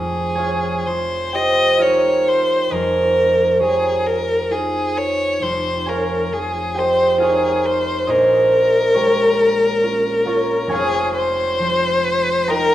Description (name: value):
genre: classical, impressionist duo for violin and harp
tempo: 67 BPM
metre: 3/4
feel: rubato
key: F minor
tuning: A4 = 440 Hz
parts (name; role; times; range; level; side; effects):
- warm violin; melody; 0.0-12.7 s; Ab4 to Eb5; -18 LUFS; left 2 dB; none
- concert harp; accompaniment; 0.0-12.7 s; F1 to Bb5; -18 LUFS; right 1 dB; none
room: moderate recital hall reverb, RT60 1.4 s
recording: none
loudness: -15 LUFS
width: side -13 dB against mid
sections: 0.0-12.7 A section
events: none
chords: 0.0 Fm9; 8.1 Bbm7; 10.7 Fm7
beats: 0.87 1.81 | 2.72 3.61 4.51 | 5.42 6.33 7.22 | 8.09 8.96 9.84 | 10.72 11.60 12.50